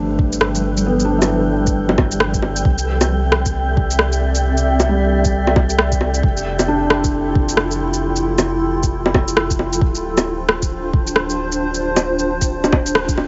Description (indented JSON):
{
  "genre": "future garage",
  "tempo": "134 BPM",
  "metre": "4/4",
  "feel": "swing 61% on 16ths",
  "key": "D dorian",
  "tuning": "A4 = 441 Hz",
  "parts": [
    { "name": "felt-muted upright piano", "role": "accompaniment", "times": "0.0-9.8 s", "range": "G3 to E4", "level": "-25 LUFS", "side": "equal", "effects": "sidechain pumping, delay" },
    { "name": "granular cloud pad", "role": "sustained chords", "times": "0.0-13.3 s", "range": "F3 to E5", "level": "-24 LUFS", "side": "equal", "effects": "built-in reverb, sidechain pumping" },
    { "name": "warm sub bass", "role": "bass", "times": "0.0-13.3 s", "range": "D1 to C2", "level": "-24 LUFS", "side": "equal", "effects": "sidechain pumping" },
    { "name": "wind-like tuned noise texture", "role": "texture", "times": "0.3-13.3 s", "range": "G4 to G5", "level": "-30 LUFS", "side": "equal", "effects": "built-in reverb" },
    { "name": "electronic kick drum", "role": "drums", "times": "0.2-13.2 s", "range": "none", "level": "-20 LUFS", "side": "equal", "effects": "overdrive" },
    { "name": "electronic shaker, rim click and bongos", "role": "drums", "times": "0.3-13.3 s", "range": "none", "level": "-20 LUFS", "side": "equal", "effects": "overdrive" }
  ],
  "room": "light reverb, digital ambience",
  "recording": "vinyl crackle, nothing above 7.7 kHz",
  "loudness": "-17 LUFS",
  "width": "mono",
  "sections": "0.0-13.3 A section",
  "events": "band accent 12.9",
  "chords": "0.0 G9; 2.6 C69; 6.2 Fmaj9; 9.8 Dm7"
}